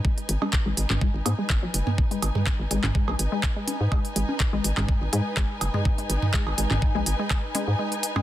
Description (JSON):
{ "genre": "minimal techno", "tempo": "124 BPM", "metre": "4/4", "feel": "swing 53% on 16ths", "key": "G# minor", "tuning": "A4 = 437 Hz", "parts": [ { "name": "resonant blip pluck", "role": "riff", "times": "0.0-8.2 s", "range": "F#3 to B3", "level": "-31 LUFS", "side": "left 1 dB", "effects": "chorus, sidechain pumping, tape echo" }, { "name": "electronic kick drum", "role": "drums", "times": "0.0-7.4 s", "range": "none", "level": "-24 LUFS", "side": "equal", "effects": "none" }, { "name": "rich studio string section", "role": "texture", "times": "0.0-8.2 s", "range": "D#4 to G#5", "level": "-33 LUFS", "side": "left 1 dB", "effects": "sidechain pumping" }, { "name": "minimal click drum kit", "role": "drums", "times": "0.2-8.1 s", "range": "handclaps, hi-hat", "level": "-30 LUFS", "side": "equal", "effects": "overdrive" }, { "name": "hollow knocking FM bass", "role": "bass", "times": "0.3-7.7 s", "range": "F#1 to G#2", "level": "-25 LUFS", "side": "equal", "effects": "sidechain pumping" }, { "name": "electronic cowbell, bongos and toms", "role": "percussion", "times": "0.4-8.2 s", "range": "none", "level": "-29 LUFS", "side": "right 2 dB", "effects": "overdrive" } ], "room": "digital ambience", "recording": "dense, heavily limited modern master", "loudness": "-22 LUFS", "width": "side -13 dB against mid", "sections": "0.0-8.2 A section", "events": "fade-in on string section 0.0-8.2; filter sweep on synth arpeggio sound 0.0-8.2; kick drops out 7.8-8.2", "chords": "0.0 G#m" }